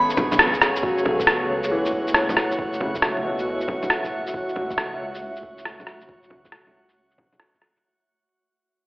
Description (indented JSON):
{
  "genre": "future garage",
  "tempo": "137 BPM",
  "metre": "4/4",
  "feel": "swing 67% on 16ths",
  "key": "F# minor",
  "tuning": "A4 = 439 Hz",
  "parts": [
    { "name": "warm upright piano", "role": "accompaniment", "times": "0.0-5.1 s", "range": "B2 to B3", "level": "-27 LUFS", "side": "equal", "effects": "sidechain pumping, dub echo" },
    { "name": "granular cloud pad", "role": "sustained chords", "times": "0.0-7.8 s", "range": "A3 to E#5", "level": "-28 LUFS", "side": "equal", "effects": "built-in reverb, sidechain pumping" },
    { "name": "dark detuned saw bass", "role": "bass", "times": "0.0-7.8 s", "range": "F#1 to C#2", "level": "-41 LUFS", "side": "equal", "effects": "sidechain pumping" },
    { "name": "drifting glass-harmonics texture", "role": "texture", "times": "0.0-7.9 s", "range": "C#4 to F#5", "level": "-31 LUFS", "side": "equal", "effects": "chorus, built-in reverb" },
    { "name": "electronic shaker, bongos, cabasa and rim click", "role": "drums", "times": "0.1-7.8 s", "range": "none", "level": "-20 LUFS", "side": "equal", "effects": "low-pass filter on perc, low-pass filter on snare" },
    { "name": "electronic kick drum", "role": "drums", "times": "0.2-7.6 s", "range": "none", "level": "-33 LUFS", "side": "equal", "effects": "none" }
  ],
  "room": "moderate digital room reverb, RT60 1.1 s",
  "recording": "played on a big sound system in a bare room, large studio reverb, vinyl crackle, telephone sound",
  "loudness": "-20 LUFS",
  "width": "side -22 dB against mid",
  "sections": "0.8-7.8 A section",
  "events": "band accent 0.4; fade-out 0.8-7.8",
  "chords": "0.0 C#7; 0.8 F#m7",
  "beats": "0.39 | 0.83 1.27 1.71 2.15 | 2.58 3.02 3.46 3.90 | 4.34 4.77 5.21 5.65 | 6.09 6.53 6.96 7.40"
}